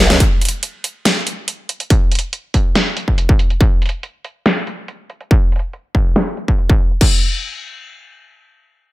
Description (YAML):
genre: heavy wobble dubstep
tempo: 141 BPM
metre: 4/4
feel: half-time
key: none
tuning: none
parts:
  - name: dubstep drum kit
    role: drums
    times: 0.1-7.1 s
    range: crash cymbal, hi-hat, snare drum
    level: -17 LUFS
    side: equal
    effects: low-pass filter on hats, low-pass filter on cymbals, low-pass filter on snare
  - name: electronic kick drum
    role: drums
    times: 0.2-7.1 s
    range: none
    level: -13 LUFS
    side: equal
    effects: distortion
room: little or no reverb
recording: none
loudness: -14 LUFS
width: side -18 dB against mid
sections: 0.2-7.0 A section; 7.0-8.9 B section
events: drum fill 0.0; filter sweep on drum 0.2-7.0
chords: none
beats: | 0.20 0.63 1.05 1.48 | 1.90 2.33 2.75 3.18 | 3.61 4.03 4.46 4.88 | 5.31 5.73 6.16 6.58 | 7.01